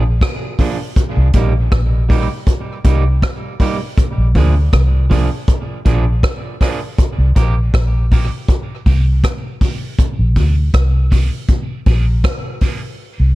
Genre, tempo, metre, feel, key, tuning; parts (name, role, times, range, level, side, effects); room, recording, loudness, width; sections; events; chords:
dub reggae; 80 BPM; 4/4; straight; A4 = 439 Hz
electric guitar at the edge of break-up; accompaniment; 0.0-12.8 s; Eb3 to Ab4; -24 LUFS; right 5 dB; high-pass filter, tape echo
vintage muted fingered electric bass; bass; 0.0-13.3 s; Bb1 to D2; -13 LUFS; equal
vintage drum kit; drums; 0.2-12.8 s; hi-hat, kick drum, rim click; -16 LUFS; equal
mellow reed electric piano; stabs; 7.4-12.8 s; C4 to Bb4; -38 LUFS; left 5 dB
small room ambience; echo-heavy mix; -13 LUFS; side -18 dB against mid
0.0-13.3 A section
break 0.0-7.0; filter sweep 4.0-13.0
0.0 Bb7; 1.0 Cm7; 4.0 Bb7; 7.0 Cm7; 10.0 Bb7